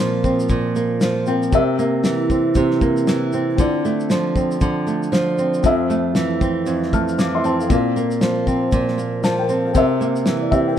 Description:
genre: acoustic pop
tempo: 117 BPM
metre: 4/4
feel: swing 60% on 16ths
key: unclear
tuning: A4 = 440 Hz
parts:
  - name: felt-muted upright piano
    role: accompaniment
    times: 0.0-10.8 s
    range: F3 to F6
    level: -23 LUFS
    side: left 5 dB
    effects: none
  - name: flamenco guitar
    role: accompaniment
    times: 0.0-10.8 s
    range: F2 to C4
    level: -18 LUFS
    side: right 2 dB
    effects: none
  - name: cloth-damped thuddy drum kit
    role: drums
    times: 0.2-10.7 s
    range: kick drum, shaker, snare drum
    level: -21 LUFS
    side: left 1 dB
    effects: none
room: light reverb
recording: minimal, uncompressed stereo recording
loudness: -16 LUFS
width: side -10 dB against mid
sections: 0.0-10.8 A section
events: none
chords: 0.0 Bbsus2; 1.5 C7; 3.6 Dm7; 5.6 Fmaj7; 7.7 Bbsus2; 9.7 C7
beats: 0.50 1.02 | 1.53 2.04 2.56 3.07 | 3.59 4.10 4.61 5.13 | 5.64 6.16 6.67 7.18 | 7.70 8.21 8.72 9.23 | 9.75 10.26 10.78

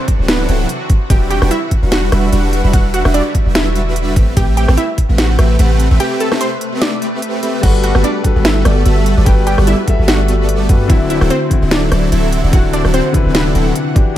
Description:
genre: future bass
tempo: 147 BPM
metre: 4/4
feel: swing 55% on 16ths, half-time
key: unclear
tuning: A4 = 440 Hz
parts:
  - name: wide unison pluck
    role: melody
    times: 0.0-14.1 s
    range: B3 to D6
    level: -21 LUFS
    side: right 1 dB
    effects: sidechain pumping, dub echo
  - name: shimmering ambient pad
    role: sustained chords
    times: 0.0-14.2 s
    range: C3 to F#5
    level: -25 LUFS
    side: left 1 dB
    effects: chorus, built-in reverb, sidechain pumping
  - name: electronic kick drum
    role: drums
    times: 0.1-5.1, 7.6-14.0 s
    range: none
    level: -12 LUFS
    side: equal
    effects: none
  - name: trap drum kit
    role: drums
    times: 0.1-14.0 s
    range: crash cymbal, hi-hat, ride cymbal, rim click, snare drum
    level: -18 LUFS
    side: equal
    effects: none
  - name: supersaw chords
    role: riff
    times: 0.2-13.7 s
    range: F#3 to G5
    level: -19 LUFS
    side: right 1 dB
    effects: sidechain pumping
  - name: warm 808-style bass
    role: bass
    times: 0.2-13.7 s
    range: D1 to G2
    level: -14 LUFS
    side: equal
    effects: sidechain pumping
  - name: warm concert grand piano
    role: accompaniment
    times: 7.6-14.2 s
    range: C3 to E5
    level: -18 LUFS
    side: left 4 dB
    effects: sidechain pumping
room: digital ambience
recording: none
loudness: -11 LUFS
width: side -12 dB against mid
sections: 0.0-14.2 A section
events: break 6.0-7.6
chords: 0.0 D9; 0.9 Em9; 4.2 Am9; 7.6 Gmaj9; 10.9 D9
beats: 0.28 0.69 | 1.10 1.51 1.92 2.33 | 2.73 3.14 3.55 3.96 | 4.37 4.78 5.18 5.59 | 6.00 6.41 6.82 7.22 | 7.63 8.04 8.45 8.86 | 9.27 9.67 10.08 10.49 | 10.90 11.31 11.71 12.12 | 12.53 12.94 13.35 13.76 | 14.16

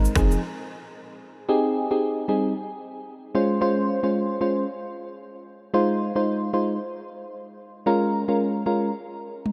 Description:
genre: afrobeats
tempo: 113 BPM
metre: 4/4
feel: swing 58% on 16ths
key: Ab major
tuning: A4 = 441 Hz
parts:
  - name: mellow FM electric piano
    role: accompaniment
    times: 0.0-8.9 s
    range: F3 to C5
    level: -26 LUFS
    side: equal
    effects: chorus
  - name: afro-pop drum kit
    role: drums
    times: 0.0-0.4, 9.5 s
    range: finger snaps, kick drum, rim click, shaker, toms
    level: -29 LUFS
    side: equal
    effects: none
room: moderate huge ambient reverb, RT60 4.5 s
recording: dreamy mix soaked in reverb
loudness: -24 LUFS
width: mono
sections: 0.0-1.5 A section; 1.5-9.5 B section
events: break 0.4-1.5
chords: 0.2 Fm7; 1.5 Abmaj7; 3.3 Dbmaj7; 5.7 Fm7; 7.9 Bbm7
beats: 0.43 0.96 | 1.49 2.02 2.55 3.08 | 3.61 4.14 4.68 5.21 | 5.74 6.27 6.80 7.33 | 7.86 8.39 8.92 9.46

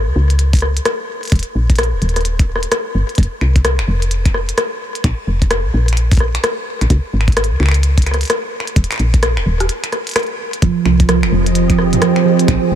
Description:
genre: IDM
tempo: 129 BPM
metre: 4/4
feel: swing 62% on 16ths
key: F minor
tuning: A4 = 439 Hz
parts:
  - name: woody FM bass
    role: bass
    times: 0.0-12.8 s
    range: Eb1 to Db2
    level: -15 LUFS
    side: equal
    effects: none
  - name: glitchy drum kit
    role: drums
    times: 0.3-12.6 s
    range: finger snaps, hi-hat, rim click, toms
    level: -19 LUFS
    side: left 1 dB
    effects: ping-pong delay
  - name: electronic kick drum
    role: drums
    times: 0.5-12.6 s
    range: none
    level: -13 LUFS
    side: equal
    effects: none
  - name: soft string machine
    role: sustained chords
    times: 11.0-12.8 s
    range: Bb2 to Eb5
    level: -18 LUFS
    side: equal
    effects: ensemble chorus
  - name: harp-like synth pluck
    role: arpeggios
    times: 10.6-12.7 s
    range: F3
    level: -14 LUFS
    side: right 9 dB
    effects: chorus, diffuse ambient delay
room: light reverb, digital ambience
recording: none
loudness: -13 LUFS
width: side -10 dB against mid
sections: 0.0-12.8 A section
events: break 9.7-10.6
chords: 0.0 Db5; 1.3 Eb5; 3.2 F5; 5.0 Bb5; 6.9 Db5; 8.8 Eb5; 10.6 Fm7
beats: 0.39 0.85 | 1.32 1.78 2.25 2.71 | 3.18 3.65 4.11 4.58 | 5.04 5.51 5.97 6.44 | 6.90 7.37 7.83 8.30 | 8.76 9.23 9.69 10.16 | 10.62 11.09 11.55 12.02 | 12.48

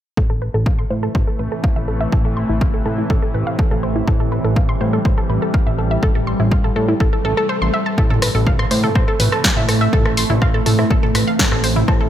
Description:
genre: melodic techno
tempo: 123 BPM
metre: 4/4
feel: straight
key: A minor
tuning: A4 = 440 Hz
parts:
  - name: evolving wavetable pad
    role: sustained chords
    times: 1.0-12.1 s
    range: C3 to B3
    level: -23 LUFS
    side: right 2 dB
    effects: chorus, built-in reverb, sidechain pumping
  - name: wide unison pluck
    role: arpeggios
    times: 0.2-12.1 s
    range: E4 to C6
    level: -22 LUFS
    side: equal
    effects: sidechain pumping, dub echo
  - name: fat analog bass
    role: bass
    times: 0.2-12.1 s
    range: A1 to A2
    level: -20 LUFS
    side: equal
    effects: sidechain pumping
  - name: analog drone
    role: drone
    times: 1.0-8.0 s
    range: A2 to E3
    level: -31 LUFS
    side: left 1 dB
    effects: chorus, sidechain pumping
  - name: electronic kick drum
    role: drums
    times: 0.2-12.0 s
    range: none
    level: -18 LUFS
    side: equal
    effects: none
  - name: swell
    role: sound effects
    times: 7.2-8.0 s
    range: none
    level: -28 LUFS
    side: equal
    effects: none
  - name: punchy analog drum machine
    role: drums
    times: 8.1-12.0 s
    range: hi-hat, rim click, snare drum, toms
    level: -20 LUFS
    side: equal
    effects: none
room: light reverb, digital ambience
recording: none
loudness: -15 LUFS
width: side -11 dB against mid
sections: 0.2-8.0 A section; 8.0-12.1 B section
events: filter sweep on analog synth bass 0.2-8.0; filter sweep on synth arpeggio sound 0.2-8.0; swell 7.2-8.0; kick drops out 7.5-8.0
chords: 0.2 Am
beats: | 0.17 0.66 1.15 1.64 | 2.12 2.61 3.10 3.59 | 4.08 4.56 5.05 5.54 | 6.03 6.51 7.00 7.49 | 7.98 8.47 8.95 9.44 | 9.93 10.42 10.90 11.39 | 11.88

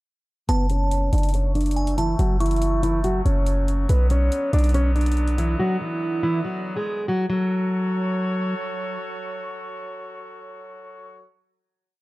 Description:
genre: hip hop, trap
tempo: 141 BPM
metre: 4/4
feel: half-time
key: F# minor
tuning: A4 = 442 Hz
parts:
  - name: picked plugged-in steel-string acoustic guitar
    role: melody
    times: 0.5-8.5 s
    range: E3 to D5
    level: -24 LUFS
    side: equal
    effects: low-pass filter
  - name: glassy synth bell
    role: second line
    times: 0.5-3.0 s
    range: G#5 to C#6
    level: -32 LUFS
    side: right 1 dB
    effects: chorus, tape echo
  - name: clear woodwind section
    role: sustained chords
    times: 0.5-11.3 s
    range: D3 to C#5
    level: -33 LUFS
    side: equal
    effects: low-pass filter
  - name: hard-hitting 808-style bass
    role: bass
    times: 0.5-5.6 s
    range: F#1 to B1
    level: -20 LUFS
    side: equal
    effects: none
  - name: electronic hi-hat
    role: drums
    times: 0.5-5.5 s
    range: none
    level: -40 LUFS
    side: left 2 dB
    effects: none
room: studio ambience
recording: dark, warm production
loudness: -20 LUFS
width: side -19 dB against mid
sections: 0.5-7.3 breakdown; 7.3-10.7 final chord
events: filter sweep 0.5-7.3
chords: 0.5 F#m; 3.9 Bm; 7.3 F#m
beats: | 0.49 0.91 1.34 1.77 | 2.19 2.62 3.04 3.47 | 3.89 4.32 4.74 5.17 | 5.59 6.02 6.45 6.87 | 7.30 7.72 8.15 8.57 | 9.00 9.43 9.85 10.28

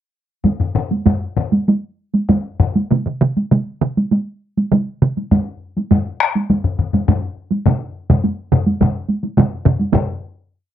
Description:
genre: japanese traditional, taiko drum ensemble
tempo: 97-110 BPM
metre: 4/4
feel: straight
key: none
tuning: none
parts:
  - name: taiko ensemble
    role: percussion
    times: 0.4-10.2 s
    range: none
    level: -16 LUFS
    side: right 2 dB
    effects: none
  - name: taiko ensemble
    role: percussion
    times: 0.4-10.4 s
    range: none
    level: -18 LUFS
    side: left 4 dB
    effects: none
  - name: taiko ensemble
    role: percussion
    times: 2.9-10.4 s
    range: none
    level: -16 LUFS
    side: right 3 dB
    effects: none
room: light reverb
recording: dry, close 1970s-style studio recording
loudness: -16 LUFS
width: side -11 dB against mid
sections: 0.4-9.9 A section; 9.9-10.7 final hit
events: speeding up 0.4-10.7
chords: none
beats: | 0.44 1.06 1.68 2.29 | 2.91 3.52 4.12 4.72 | 5.32 5.92 6.50 7.09 | 7.67 8.24 8.81 9.37 | 9.93

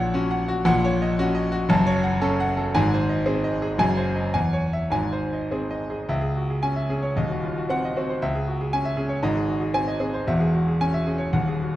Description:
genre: classical, virtuoso piano study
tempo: 102-119 BPM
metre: 2/4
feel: rubato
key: C# minor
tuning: A4 = 440 Hz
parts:
  - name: clear concert grand piano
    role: solo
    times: 0.0-11.8 s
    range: Eb1 to A5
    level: -21 LUFS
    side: equal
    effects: none
room: wet recital hall reverb, RT60 1.7 s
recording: dark, warm production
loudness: -21 LUFS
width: side -14 dB against mid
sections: 0.0-6.1 A section; 6.1-11.8 B section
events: none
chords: 0.0 Gb/Bb; 0.7 Ebm7/Bb; 1.7 F#m; 2.7 G#; 3.8 G#7/F#; 4.4 C#m/E; 4.9 G#; 6.1 C#m; 7.2 Cdim/Eb; 8.2 C#m; 9.2 G#; 10.3 C#m/E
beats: 0.16 | 0.68 1.19 | 1.70 2.22 | 2.75 3.27 | 3.81 4.36 | 4.92 5.50 | 6.08 6.62 | 7.16 7.69 | 8.21 8.73 | 9.23 9.75 | 10.27 10.80 | 11.34

